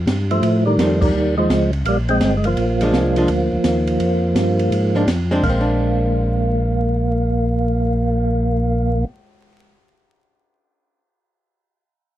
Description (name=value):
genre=soul jazz organ trio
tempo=168 BPM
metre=4/4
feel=swing 65% on 8ths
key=Bb mixolydian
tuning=A4 = 440 Hz
part: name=tonewheel organ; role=bass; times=0.0-9.0 s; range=G1 to A2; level=-20 LUFS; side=equal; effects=overdrive, chorus vibrato
part: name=open jazz drum kit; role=drums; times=0.1-8.2 s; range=crash cymbal, cymbal swell, hi-hat, kick drum, ride cymbal, snare drum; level=-25 LUFS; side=equal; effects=none
part: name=percussive tonewheel organ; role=melody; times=0.3-9.0 s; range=Eb3 to C4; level=-19 LUFS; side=right 1 dB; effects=slow rotary speaker, overdrive
part: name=archtop guitar, miked and amplified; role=accompaniment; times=0.8-9.9 s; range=Eb3 to D4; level=-22 LUFS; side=equal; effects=none
room=little or no reverb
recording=dark, warm production, vinyl crackle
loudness=-16 LUFS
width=side -13 dB against mid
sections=0.0-5.4 A section; 5.4-8.3 B section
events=band accent 1.0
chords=0.0 F7; 1.1 Eb7; 2.6 Bb7; 5.4 Bb9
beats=0.07 0.43 0.79 | 1.15 1.50 1.86 2.22 | 2.57 2.93 3.29 3.64 | 4.00 4.36 4.71 5.07 | 5.43 5.79 6.14 6.50 | 6.86 7.21 7.57 7.93